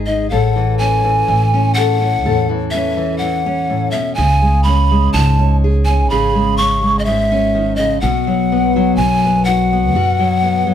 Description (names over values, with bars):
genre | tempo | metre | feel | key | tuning
acoustic folk duo or small band | 62 BPM | 4/4 | straight | unclear | A4 = 439 Hz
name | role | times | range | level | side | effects
fingerpicked steel-string acoustic guitar | accompaniment | 0.0-10.7 s | F#2 to A4 | -17 LUFS | left 2 dB | none
upright bass | bass | 0.0-10.7 s | G#1 to F#2 | -17 LUFS | equal | none
breathy mellow pan flute | melody | 0.1-10.7 s | D#5 to C#6 | -17 LUFS | equal | none
room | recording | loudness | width
light reverb | dark, warm production | -12 LUFS | side -9 dB against mid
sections
0.0-10.7 A section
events
none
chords
0.3 A; 4.2 C#5; 8.0 B5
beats
| 0.32 1.29 2.25 3.22 | 4.18 5.14 6.11 7.07 | 8.03 8.99 9.94